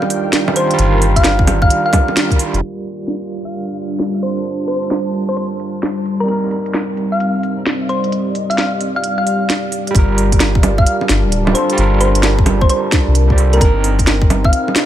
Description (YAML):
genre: future garage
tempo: 131 BPM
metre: 4/4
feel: swing 65% on 16ths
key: G minor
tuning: A4 = 440 Hz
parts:
  - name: thumb-piano-like synth pluck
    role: melody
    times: 0.0-14.7 s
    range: Bb4 to F5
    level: -20 LUFS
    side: left 1 dB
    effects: chorus, dub echo
  - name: overdriven tine electric piano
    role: accompaniment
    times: 0.0-14.9 s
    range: G3 to D5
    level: -21 LUFS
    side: right 4 dB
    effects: medium tremolo, sidechain pumping, tape echo
  - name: dark analog pad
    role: sustained chords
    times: 0.0-14.9 s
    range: Eb3 to A5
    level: -22 LUFS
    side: left 1 dB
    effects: chorus, sidechain pumping
  - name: organic electronic drum kit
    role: drums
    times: 0.0-14.9 s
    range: bongos, hi-hat, snare drum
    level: -18 LUFS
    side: right 1 dB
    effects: low-pass filter on hats, small room ambience, low-pass filter on snare, low-pass filter on perc
  - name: soft dub sub bass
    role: bass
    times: 0.8-2.6, 9.9-14.5 s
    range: D1 to C2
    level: -15 LUFS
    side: equal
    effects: tube saturation, sidechain pumping
  - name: electronic kick drum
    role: drums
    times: 1.2-2.4, 9.9-14.5 s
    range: none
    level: -13 LUFS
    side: equal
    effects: small room ambience
room: light reverb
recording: low-pass filter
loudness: -13 LUFS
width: side -11 dB against mid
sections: 0.0-2.6 A section; 2.6-9.9 B section; 9.9-14.9 A section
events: band accent 2.2; filter sweep on drum 2.6-9.9; filter sweep 2.6-9.9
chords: 0.0 Ebmaj7/G; 2.6 Gm7; 6.3 Cm7/G; 9.9 Gm7; 13.6 Cm7/G